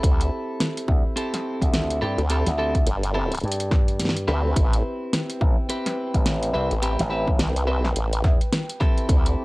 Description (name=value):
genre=glitch hop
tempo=106 BPM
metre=4/4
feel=swing 60% on 16ths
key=A minor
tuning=A4 = 439 Hz
part: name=clean electric guitar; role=stabs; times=0.0-9.4 s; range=C4 to B4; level=-28 LUFS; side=equal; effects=sidechain pumping, cassette tape, analog delay
part: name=formant-sweep wobble bass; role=bass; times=0.0-9.4 s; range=G1 to D2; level=-23 LUFS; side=equal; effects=chorus
part: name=electronic kick drum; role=drums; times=0.0-9.2 s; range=none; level=-20 LUFS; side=equal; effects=cassette tape
part: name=pop drum kit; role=drums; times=0.0-9.4 s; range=hi-hat, snare drum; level=-26 LUFS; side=equal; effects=cassette tape
part: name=slap bass with an envelope filter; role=bass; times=0.9-8.4 s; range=A1 to G2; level=-25 LUFS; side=equal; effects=none
part: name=dark analog pad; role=sustained chords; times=4.9-9.4 s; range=B4 to D6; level=-34 LUFS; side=left 1 dB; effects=chorus, sidechain pumping, cassette tape
room=little or no reverb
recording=home recording on cassette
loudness=-20 LUFS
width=side -22 dB against mid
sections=0.0-9.4 A section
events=kick drops out 4.0-4.6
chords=0.0 D7sus4; 4.6 Am9